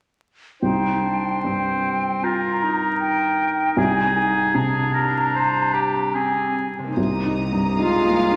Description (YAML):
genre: cinematic, emotional film score for orchestra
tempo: 71-78 BPM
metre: 4/4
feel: rubato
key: C minor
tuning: A4 = 440 Hz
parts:
  - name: clear clarinet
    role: second line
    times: 0.6-8.4 s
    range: C4 to F4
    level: -27 LUFS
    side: equal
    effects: none
  - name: clear oboe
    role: second line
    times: 0.6-6.6 s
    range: G4 to C5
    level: -27 LUFS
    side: equal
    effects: none
  - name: hollow concert flute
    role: second line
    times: 0.6-6.6 s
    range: G5 to Bb5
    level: -26 LUFS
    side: equal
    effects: none
  - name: felt-muted upright piano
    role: accompaniment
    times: 0.6-8.4 s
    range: C2 to Eb4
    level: -27 LUFS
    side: equal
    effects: none
  - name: concert harp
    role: arpeggios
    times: 6.8-8.4 s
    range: C3 to C5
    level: -34 LUFS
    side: equal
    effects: none
  - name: rich studio violin section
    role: second line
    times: 7.0-8.4 s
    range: Bb5 to Eb6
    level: -31 LUFS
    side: equal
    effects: none
  - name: rich studio double bass section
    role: bass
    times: 7.0-8.4 s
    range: C2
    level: -34 LUFS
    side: equal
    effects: none
  - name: warm studio cello section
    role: bass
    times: 7.0-8.4 s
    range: C3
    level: -34 LUFS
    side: equal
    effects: none
  - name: warm symphonic violin section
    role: melody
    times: 7.8-8.4 s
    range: F5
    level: -29 LUFS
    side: equal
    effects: none
  - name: rich symphonic viola section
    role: accompaniment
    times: 7.8-8.4 s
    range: Ab3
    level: -30 LUFS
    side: equal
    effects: none
room: wet scoring stage reverb, RT60 2.0 s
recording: vinyl crackle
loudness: -21 LUFS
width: mono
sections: 0.6-7.0 A section; 7.0-8.4 B section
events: none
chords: 0.6 Cm7; 3.8 Ab/C; 7.0 Cm7